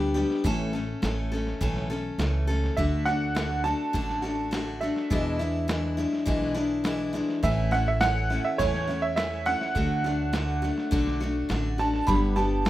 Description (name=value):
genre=honky-tonk and classic country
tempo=103 BPM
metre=4/4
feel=straight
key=D major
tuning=A4 = 440 Hz
part: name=picked steel-string acoustic guitar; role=accompaniment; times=0.0-12.7 s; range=E2 to A4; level=-28 LUFS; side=left 2 dB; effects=none
part: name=upright bass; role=bass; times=0.0-12.7 s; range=G1 to E2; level=-30 LUFS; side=equal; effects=none
part: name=lo-fi sampler-style drum kit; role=drums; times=0.2-12.7 s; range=hi-hat, kick drum, snare drum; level=-33 LUFS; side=equal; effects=none
part: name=bright upright piano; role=melody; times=2.8-12.7 s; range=C#5 to B5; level=-29 LUFS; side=right 3 dB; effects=tape echo
room=moderate small room reverb, RT60 0.6 s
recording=rough home demo mix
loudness=-24 LUFS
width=side -14 dB against mid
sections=0.0-12.7 A section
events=none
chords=0.5 A; 2.8 D; 5.1 E7; 7.4 A; 9.8 D; 12.1 G